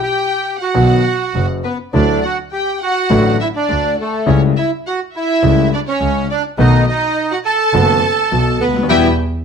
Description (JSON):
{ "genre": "tango", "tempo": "103 BPM", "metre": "4/4", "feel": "rubato", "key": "unclear", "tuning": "A4 = 439 Hz", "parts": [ { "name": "bandoneon", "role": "melody", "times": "0.0-9.1 s", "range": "A3 to A4", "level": "-17 LUFS", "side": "right 4 dB", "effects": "none" }, { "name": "warm symphonic violin section", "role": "second line", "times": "0.0-9.1 s", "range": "A4 to A5", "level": "-21 LUFS", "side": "left 2 dB", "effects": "none" }, { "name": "clear concert grand piano", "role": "accompaniment", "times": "0.7-9.1 s", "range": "F#1 to F#4", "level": "-16 LUFS", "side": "left 3 dB", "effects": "none" }, { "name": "warm double bass", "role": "bass", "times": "0.8-9.1 s", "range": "F#1 to E2", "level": "-17 LUFS", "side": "right 1 dB", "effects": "none" } ], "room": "moderate studio reverb, RT60 0.8 s", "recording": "none", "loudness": "-13 LUFS", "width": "side -6 dB against mid", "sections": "0.0-9.4 A section", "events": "band accent 8.9-9.4", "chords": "0.0 N.C.; 0.8 B; 1.9 Dadd9; 4.3 A7/C#; 6.6 B7; 8.9 Em" }